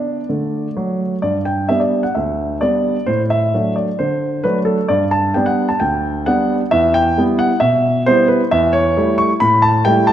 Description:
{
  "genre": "classical-period piano sonatina",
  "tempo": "132 BPM",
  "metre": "4/4",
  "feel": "rubato",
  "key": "G major",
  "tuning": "A4 = 440 Hz",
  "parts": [
    { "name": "warm baby grand piano", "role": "solo", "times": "0.0-10.1 s", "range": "D2 to C#6", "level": "-14 LUFS", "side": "equal", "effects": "none" }
  ],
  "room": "moderate recital hall reverb, RT60 1.4 s",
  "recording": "dark, warm production, lossy compression artefacts",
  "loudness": "-14 LUFS",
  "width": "side -10 dB against mid",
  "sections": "0.0-1.2 A section; 1.2-10.1 B section",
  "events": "none",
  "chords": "0.3 D; 1.2 G; 3.1 D7/A; 4.9 G; 6.7 Em; 8.5 A7/E",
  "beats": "0.29 0.76 | 1.24 1.70 2.16 2.62 | 3.08 3.54 4.00 4.45 | 4.90 5.35 5.81 6.27 | 6.72 7.18 7.62 8.06 | 8.51 8.96 9.41 9.85"
}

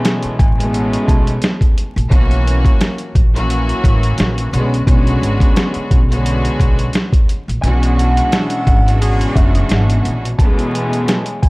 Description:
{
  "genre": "hip hop, boom-bap hip-hop",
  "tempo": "87 BPM",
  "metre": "4/4",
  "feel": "swing 56% on 16ths",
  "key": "B dorian",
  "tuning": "A4 = 435 Hz",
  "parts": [
    { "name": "mellow electric guitar", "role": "melody", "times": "0.0-2.1, 7.6-11.5 s", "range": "E5 to A5", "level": "-25 LUFS", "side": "equal", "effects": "spring reverb, tape echo" },
    { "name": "warm studio string section", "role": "accompaniment", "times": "0.0-11.5 s", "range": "B2 to F#4", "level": "-19 LUFS", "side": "equal", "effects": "none" },
    { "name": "boom bap sampler-style drum kit", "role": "drums", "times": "0.0-11.5 s", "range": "hi-hat, kick drum, snare drum", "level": "-14 LUFS", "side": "equal", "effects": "none" },
    { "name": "upright bass", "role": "bass", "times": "0.2-10.3 s", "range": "F#1 to B1", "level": "-16 LUFS", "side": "equal", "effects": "none" },
    { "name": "clear horn section", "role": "stabs", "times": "7.8-9.7 s", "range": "F#3 to G#4", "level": "-29 LUFS", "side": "equal", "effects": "tape echo" }
  ],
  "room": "little or no reverb",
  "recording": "dry, gritty hardware recording, transformer saturation, vinyl crackle",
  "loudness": "-12 LUFS",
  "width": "side -24 dB against mid",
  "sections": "0.0-11.5 A section",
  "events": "kick muted 7.6-8.3",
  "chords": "0.0 Amaj9; 2.1 F#7; 4.5 Bm69; 7.6 E13; 10.4 Amaj9/B",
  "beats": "0.04 0.73 1.42 | 2.11 2.80 3.49 4.18 | 4.87 5.56 6.25 6.94 | 7.63 8.32 9.01 9.70 | 10.39 11.08"
}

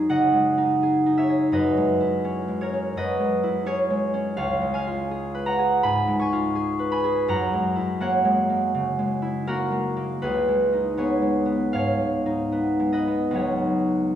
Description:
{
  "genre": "classical, solo harp piece",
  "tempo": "68-86 BPM",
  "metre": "4/4",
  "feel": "rubato",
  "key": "unclear",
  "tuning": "A4 = 440 Hz",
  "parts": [
    { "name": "concert harp", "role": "solo", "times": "0.0-14.2 s", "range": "C#2 to C#6", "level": "-21 LUFS", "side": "equal", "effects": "none" }
  ],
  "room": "wet recital hall reverb, RT60 1.6 s",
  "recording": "recorded in a church or concert hall",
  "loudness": "-21 LUFS",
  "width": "side -10 dB against mid",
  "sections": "0.0-14.2 A section",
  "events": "none",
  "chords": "0.0 F#69; 1.5 E69/F#; 4.4 C#7; 7.3 F#9; 10.2 C#9; 13.4 C#9sus4",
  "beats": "0.09 0.82 | 1.54 2.25 2.96 3.66 | 4.38 5.09 5.82 6.55 | 7.28 8.00 8.72 9.47 | 10.22 10.98 11.74 12.52 | 13.36"
}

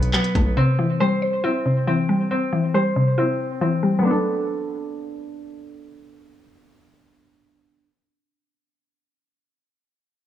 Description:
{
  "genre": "hip hop, drill",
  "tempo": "138 BPM",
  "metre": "4/4",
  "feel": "half-time",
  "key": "B phrygian",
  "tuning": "A4 = 440 Hz",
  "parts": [
    { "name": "mallet-like synth pluck", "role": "accompaniment", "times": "0.0-7.9 s", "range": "B2 to C5", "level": "-20 LUFS", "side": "left 2 dB", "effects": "chorus, low-pass filter" },
    { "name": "concert harp", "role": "arpeggios", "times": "0.0-7.9 s", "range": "B3 to C5", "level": "-25 LUFS", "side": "right 1 dB", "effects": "low-pass filter, tape echo" },
    { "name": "distorted 808-style bass", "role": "bass", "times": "0.0-0.6 s", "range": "B1", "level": "-24 LUFS", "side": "equal", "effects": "distortion" },
    { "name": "drill drum kit", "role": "drums", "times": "0.0-0.5 s", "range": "handclaps, hi-hat, kick drum", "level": "-22 LUFS", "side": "equal", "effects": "none" }
  ],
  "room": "light reverb",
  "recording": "low-pass filter, small room ambience",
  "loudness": "-18 LUFS",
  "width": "side -11 dB against mid",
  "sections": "0.0-4.0 A section; 4.0-7.5 B section",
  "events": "filter sweep 0.0-4.0",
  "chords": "0.0 Bm7; 0.6 C; 4.0 Bm7",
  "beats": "0.13 | 0.57 1.00 1.44 1.87 | 2.31 2.74 3.18 3.61 | 4.05 4.48 4.92 5.35 | 5.79 6.22 6.66 7.09"
}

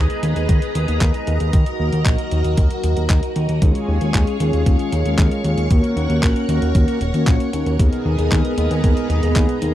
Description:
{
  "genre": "italo disco",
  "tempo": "115 BPM",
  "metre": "4/4",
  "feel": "straight",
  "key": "unclear",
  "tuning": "A4 = 441 Hz",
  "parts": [
    { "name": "string machine, full ensemble", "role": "sustained chords", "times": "0.0-9.7 s", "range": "Cb4 to Db6", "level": "-24 LUFS", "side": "right 1 dB", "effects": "ensemble chorus" },
    { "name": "fat analog bass", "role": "bass", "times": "0.0-9.7 s", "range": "Eb1 to Eb2", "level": "-20 LUFS", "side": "equal", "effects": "none" },
    { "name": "clean 12-bit digital drum machine", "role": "drums", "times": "0.1-9.7 s", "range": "handclaps, hi-hat", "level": "-27 LUFS", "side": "equal", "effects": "studio ambience" },
    { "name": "electronic kick drum", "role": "drums", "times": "0.5-9.5 s", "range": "none", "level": "-17 LUFS", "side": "equal", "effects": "studio ambience" },
    { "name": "mellow synth brass", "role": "stabs", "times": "3.6-9.7 s", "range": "Ab3 to Db5", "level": "-22 LUFS", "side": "left 2 dB", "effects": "chorus, tape echo" }
  ],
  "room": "little or no reverb",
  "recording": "dry, close 1970s-style studio recording",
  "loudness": "-15 LUFS",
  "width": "side -13 dB against mid",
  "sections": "0.0-9.7 A section",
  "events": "none",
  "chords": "0.0 Abmadd9/Eb; 1.5 Ebm; 3.6 Db/Eb; 5.7 Gb; 7.8 Abmadd9/Eb",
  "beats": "0.49 1.01 | 1.53 2.06 2.58 3.10 | 3.62 4.14 4.66 5.19 | 5.71 6.23 6.75 7.27 | 7.79 8.32 8.84 9.36"
}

